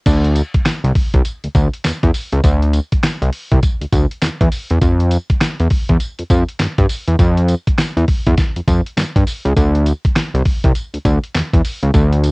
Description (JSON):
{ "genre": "R&B, new jack swing", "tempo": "101 BPM", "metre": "4/4", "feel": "swing 62% on 16ths", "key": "unclear", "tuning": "A4 = 441 Hz", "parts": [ { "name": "fat analog bass", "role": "bass", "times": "0.1-12.3 s", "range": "C2 to G2", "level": "-14 LUFS", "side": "equal", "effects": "none" }, { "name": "dusty soul sampler-style drum kit", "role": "drums", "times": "0.1-12.3 s", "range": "crash cymbal, handclaps, hi-hat, kick drum, snare drum, tambourine", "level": "-15 LUFS", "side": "equal", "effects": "cassette tape" } ], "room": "little or no reverb", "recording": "home recording on cassette", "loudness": "-13 LUFS", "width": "side -33 dB against mid", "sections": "0.1-12.3 A section", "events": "none", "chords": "none" }